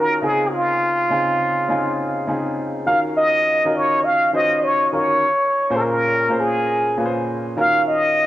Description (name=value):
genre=R&B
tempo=102 BPM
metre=4/4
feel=swing 67% on 16ths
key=unclear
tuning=A4 = 440 Hz
part: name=trumpet with plunger mute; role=melody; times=0.0-8.3 s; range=F4 to F5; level=-17 LUFS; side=equal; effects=cassette tape
part: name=warm grand piano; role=accompaniment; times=0.0-8.3 s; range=Bb2 to F5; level=-23 LUFS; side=left 1 dB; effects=none
room=moderate lush hall reverb, RT60 2.4 s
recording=home recording on cassette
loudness=-16 LUFS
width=side -14 dB against mid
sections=0.0-2.9 A section; 2.9-8.3 B section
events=none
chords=0.2 Dbmaj7; 2.9 Ebm7; 5.2 Bbm7; 7.6 Ebm7